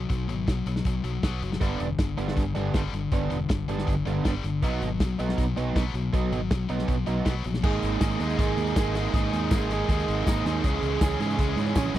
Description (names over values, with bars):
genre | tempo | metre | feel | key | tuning
indie rock | 159 BPM | 4/4 | straight | unclear | A4 = 441 Hz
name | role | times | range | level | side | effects
heavy high-gain guitar | riff | 0.0-12.0 s | G2 to G#4 | -31 LUFS | left 7 dB | distortion
fingered electric bass | bass | 0.0-12.0 s | E1 to G#2 | -29 LUFS | equal | none
loose indie drum kit | drums | 0.1-12.0 s | crash cymbal, hi-hat, kick drum, snare drum | -27 LUFS | equal | none
biting overdriven guitar | riff | 1.6-12.0 s | B2 to G#4 | -29 LUFS | right 6 dB | analog chorus
tonewheel organ | sustained chords | 7.6-12.0 s | F#4 to E6 | -40 LUFS | equal | none
tambourine | percussion | 8.0-11.8 s | none | -47 LUFS | right 8 dB | none
room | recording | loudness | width
little or no reverb | dry, close 1970s-style studio recording | -24 LUFS | side -13 dB against mid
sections
0.0-7.6 A section; 7.6-12.0 B section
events
none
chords
0.0 B5; 1.6 G; 4.6 B; 7.6 G#sus2; 10.6 C#m7